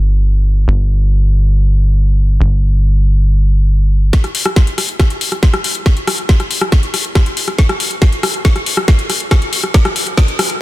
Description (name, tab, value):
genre	psychedelic trance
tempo	139 BPM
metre	4/4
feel	straight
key	unclear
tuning	A4 = 440 Hz
part	tight sequencer bass	bass	0.0-4.1 s	G1	-10 LUFS	equal	tube saturation
part	electronic kick drum	drums	4.1-10.3 s	none	-10 LUFS	equal	small room ambience
part	garage drum kit	drums	4.1-10.6 s	hi-hat, rim click, snare drum	-16 LUFS	left 1 dB	soft clipping on snare, small room ambience
room	digital ambience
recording	dense, heavily limited modern master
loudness	-11 LUFS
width	side -17 dB against mid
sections	0.0-4.1 A section; 4.1-10.6 B section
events	build-up 4.1-10.6; drum fill 4.1-10.6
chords	none